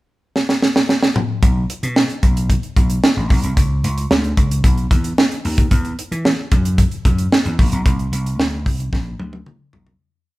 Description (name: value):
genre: early-eighties boogie funk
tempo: 112 BPM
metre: 4/4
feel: straight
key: unclear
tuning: A4 = 439 Hz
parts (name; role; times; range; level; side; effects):
- tight funk drum kit; drums; 0.4-10.0 s; hi-hat, kick drum, snare drum, toms; -16 LUFS; equal; none
- vintage slap bass; bass; 1.4-9.9 s; A1 to E3; -20 LUFS; equal; none
room: light reverb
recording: band playing live in one room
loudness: -15 LUFS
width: side -19 dB against mid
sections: 0.0-1.4 pickup bar; 1.4-10.0 verse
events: drum fill 0.4-1.4, 8.9-10.0; fade-out 7.9-10.0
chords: none